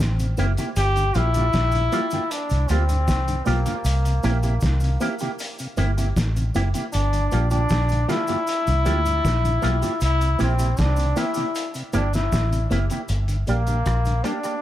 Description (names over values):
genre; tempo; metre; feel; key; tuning
roots reggae; 78 BPM; 4/4; straight; G dorian; A4 = 441 Hz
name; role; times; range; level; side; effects
bright trombone; melody; 0.0-14.6 s; Bb3 to G4; -25 LUFS; left 2 dB; dub echo
vintage muted fingered electric bass; bass; 0.0-14.2 s; F#1 to D2; -21 LUFS; equal; none
cloth-damped thuddy drum kit; drums; 0.0-14.6 s; hi-hat, kick drum, rim click, snare drum; -29 LUFS; equal; tape echo
mellow tonewheel organ; accompaniment; 0.2-14.3 s; G2 to D4; -32 LUFS; left 2 dB; chorus vibrato, slow rotary speaker
cabasa; percussion; 0.2-14.6 s; none; -41 LUFS; right 1 dB; none
electric guitar with an envelope filter; accompaniment; 0.4-14.5 s; Bb3 to G4; -30 LUFS; right 3 dB; analog chorus, dub echo
room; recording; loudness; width
small room reverb; none; -19 LUFS; side -13 dB against mid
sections
0.0-13.1 A section; 13.1-14.6 B section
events
none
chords
0.0 C7; 0.8 Gm7; 3.8 C7; 6.9 Gm7; 10.0 C7; 13.1 Gm